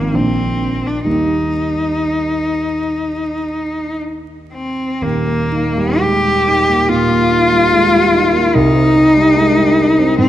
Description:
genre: classical, romantic duo for cello and grand piano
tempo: 58-74 BPM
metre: 4/4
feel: rubato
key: Eb major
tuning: A4 = 441 Hz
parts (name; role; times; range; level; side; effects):
- rich cello; melody; 0.0-10.3 s; Bb3 to G4; -14 LUFS; left 1 dB; none
- dark concert grand piano; accompaniment; 0.0-10.3 s; Eb1 to Eb4; -16 LUFS; right 2 dB; none
room: wet concert hall reverb, RT60 2.3 s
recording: vinyl crackle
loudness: -12 LUFS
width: side -12 dB against mid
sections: 0.0-5.0 A section; 5.0-10.3 B section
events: none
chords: 0.1 Bb; 1.1 Eb; 8.5 Cm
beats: 0.14 | 1.09 2.06 3.05 4.04 | 5.03 6.02 6.90 7.72 | 8.55 9.37 10.20

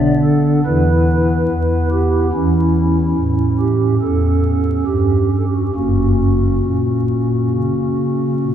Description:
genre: classical, chorale-style piece for pipe organ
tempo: 67-72 BPM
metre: 4/4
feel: rubato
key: unclear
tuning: A4 = 438 Hz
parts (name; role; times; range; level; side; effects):
- pipe organ, stopped flute; solo; 0.0-8.5 s; F#1 to D5; -14 LUFS; equal; none
room: wet church reverb, RT60 2.7 s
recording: dark, warm production, vinyl crackle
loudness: -14 LUFS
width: side -9 dB against mid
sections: 0.0-8.5 A section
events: none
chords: 0.0 Bm; 0.7 E5; 2.3 C#dim/E; 5.7 F#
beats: 0.66 1.50 | 2.34 3.17 4.01 4.86 | 5.73 6.62 7.50 8.38

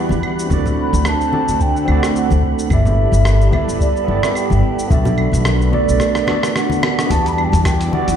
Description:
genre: sunset chillout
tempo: 109 BPM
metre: 4/4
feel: swing 55% on 16ths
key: E minor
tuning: A4 = 441 Hz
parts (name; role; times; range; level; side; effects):
- mellow hollow wooden flute; melody; 0.0-8.2 s; D5 to B5; -21 LUFS; equal; ping-pong delay
- tine electric piano; accompaniment; 0.0-8.2 s; B3 to D5; -22 LUFS; right 2 dB; medium stereo tremolo, auto-pan
- lush unison pad; sustained chords; 0.0-8.2 s; D3 to F#5; -23 LUFS; right 2 dB; chorus
- wind-like tuned noise texture; texture; 0.0-8.2 s; B5 to D6; -32 LUFS; right 3 dB; built-in reverb
- upright bass; bass; 0.1-8.2 s; G1 to E2; -17 LUFS; equal; none
- dusty soul sampler-style drum kit; drums; 0.1-8.2 s; claves, hi-hat, rim click, shaker; -24 LUFS; equal; overdrive
- congas and bongos; percussion; 0.1-8.2 s; none; -24 LUFS; left 3 dB; none
- electronic kick drum; drums; 0.5-7.8 s; none; -19 LUFS; equal; none
room: light reverb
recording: played on a big sound system in a bare room, large studio reverb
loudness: -13 LUFS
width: side -8 dB against mid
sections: 0.0-7.1 A section; 7.1-8.2 B section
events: drum fill 6.0-7.1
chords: 0.0 Em9; 0.5 D7; 2.7 G69; 4.9 Bm7; 7.1 Em9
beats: | 0.50 1.05 1.60 2.15 | 2.70 3.25 3.81 4.36 | 4.91 5.46 6.01 6.56 | 7.11 7.66

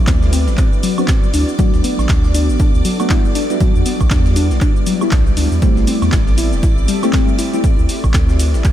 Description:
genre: deep house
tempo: 119 BPM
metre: 4/4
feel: swing 59% on 16ths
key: A dorian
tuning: A4 = 443 Hz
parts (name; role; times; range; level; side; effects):
- warbly tape-like pad; sustained chords; 0.0-8.7 s; G3 to E5; -24 LUFS; right 1 dB; chorus, built-in reverb, sidechain pumping
- deep mellow chord stab; stabs; 0.0-7.6 s; F#3 to G4; -22 LUFS; left 1 dB; chorus, phaser, sidechain pumping, tape echo
- round analog bass; bass; 0.0-8.6 s; E1 to E2; -16 LUFS; equal; sidechain pumping
- soft string machine; texture; 0.0-8.7 s; D5 to D6; -30 LUFS; equal; ensemble chorus, sidechain pumping
- soft round pluck; arpeggios; 0.1-7.5 s; F#3 to E4; -22 LUFS; left 3 dB; chorus, sidechain pumping, tape echo
- breakbeat sampler-style drum kit; drums; 0.1-8.7 s; hi-hat, snare drum; -35 LUFS; equal; none
- electronic kick drum; drums; 0.1-8.7 s; none; -14 LUFS; equal; none
- punchy analog drum machine; drums; 0.1-8.7 s; cabasa, handclaps, hi-hat, woodblock; -25 LUFS; right 1 dB; none
room: light reverb, digital ambience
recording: none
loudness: -12 LUFS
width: side -12 dB against mid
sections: 0.0-8.7 A section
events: none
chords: 0.0 D13; 1.3 Bm7; 3.4 Em9; 5.6 Am7; 7.6 D13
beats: 0.07 0.58 1.08 | 1.59 2.09 2.60 3.10 | 3.60 4.11 4.61 5.12 | 5.62 6.13 6.63 7.13 | 7.64 8.14 8.65

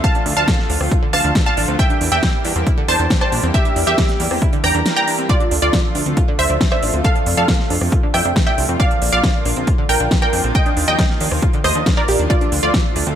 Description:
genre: uplifting trance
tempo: 137 BPM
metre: 4/4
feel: straight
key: D minor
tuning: A4 = 440 Hz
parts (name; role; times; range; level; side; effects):
- wide unison pluck; melody; 0.0-13.0 s; F4 to Bb5; -19 LUFS; right 1 dB; sidechain pumping, tape echo
- lush unison pad; sustained chords; 0.0-13.2 s; C3 to G4; -25 LUFS; equal; chorus, sidechain pumping
- big-room dance drum kit; drums; 0.0-13.2 s; hi-hat, rim click, snare drum; -22 LUFS; right 1 dB; sidechain pumping on hats
- electronic kick drum; drums; 0.0-12.8 s; none; -17 LUFS; equal; none
- analog pluck; arpeggios; 0.1-13.1 s; D3 to D5; -26 LUFS; right 2 dB; chorus, phaser, sidechain pumping, tape echo
- plucky analog bass; bass; 0.3-13.1 s; A1 to F2; -21 LUFS; equal; sidechain pumping
room: light reverb, digital ambience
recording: faint mains hum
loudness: -14 LUFS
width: side -9 dB against mid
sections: 0.0-13.2 A section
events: kick drops out 4.9-5.3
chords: 0.0 Dm; 1.8 Edim; 5.3 Dm; 7.0 F; 8.8 Bb; 10.6 Ebsus2; 12.3 Dm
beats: | 0.04 0.48 0.92 1.35 | 1.79 2.23 2.67 3.10 | 3.54 3.98 4.42 4.86 | 5.29 5.73 6.17 6.61 | 7.05 7.48 7.92 8.36 | 8.80 9.24 9.67 10.11 | 10.55 10.99 11.43 11.86 | 12.30 12.74

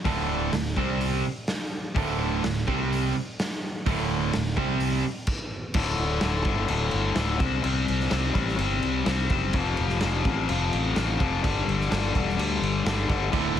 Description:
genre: hard rock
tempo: 127 BPM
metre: 4/4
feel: straight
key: unclear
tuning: A4 = 440 Hz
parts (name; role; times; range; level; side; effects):
- overdriven electric guitar; riff; 0.0-13.6 s; D2 to C4; -27 LUFS; left 6 dB; none
- crunchy overdriven guitar; riff; 0.1-5.0, 13.3-13.6 s; D2 to C4; -28 LUFS; right 10 dB; none
- fingered electric bass; bass; 0.1-13.6 s; D1 to D2; -29 LUFS; right 1 dB; none
- raw garage drum kit; drums; 0.1-13.6 s; crash cymbal, hi-hat, kick drum, snare drum; -29 LUFS; right 1 dB; none
room: small room ambience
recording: heavily compressed radio sound, multiband compression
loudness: -23 LUFS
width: side -10 dB against mid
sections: 0.0-5.8 A section; 5.8-13.6 B section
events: stop 5.3-5.8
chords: 0.1 D5; 0.8 C5; 2.0 D5; 2.7 C5; 3.9 D5; 4.6 C5; 5.3 N.C.; 5.8 D5; 7.4 C5; 9.5 F; 11.4 G5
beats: | 0.06 0.53 1.01 1.48 | 1.96 2.43 2.91 3.38 | 3.86 4.33 4.81 5.28 | 5.75 6.23 6.70 7.18 | 7.65 8.12 8.60 9.07 | 9.54 10.02 10.49 10.96 | 11.44 11.91 12.38 12.85 | 13.33

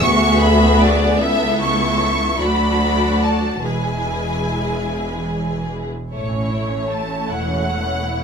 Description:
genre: classical, slow romantic movement for string orchestra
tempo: 47-54 BPM (dotted quarters)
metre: 6/8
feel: rubato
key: A major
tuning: A4 = 440 Hz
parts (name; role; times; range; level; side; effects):
- clear symphonic violin section; melody; 0.0-8.2 s; C#5 to C#6; -21 LUFS; equal; none
- rich symphonic violin section; second line; 0.0-8.2 s; A3 to E5; -24 LUFS; right 1 dB; none
- rich symphonic viola section; accompaniment; 0.0-8.2 s; F#3 to F#4; -24 LUFS; left 2 dB; none
- rich symphonic cello section; bass; 0.0-8.2 s; C#2 to A2; -23 LUFS; right 2 dB; none
- rich symphonic double bass section; bass; 0.0-8.2 s; E1 to D2; -22 LUFS; equal; none
room: moderate studio reverb, RT60 0.6 s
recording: minimal, uncompressed stereo recording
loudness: -16 LUFS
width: side -6 dB against mid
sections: 0.0-6.1 A section; 6.1-8.2 B section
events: none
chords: 0.0 E7/D; 1.2 A/C#; 2.4 Bm7/D; 3.6 E; 6.1 A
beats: 0.01 | 1.18 2.39 | 3.62 4.90 | 6.12 7.28

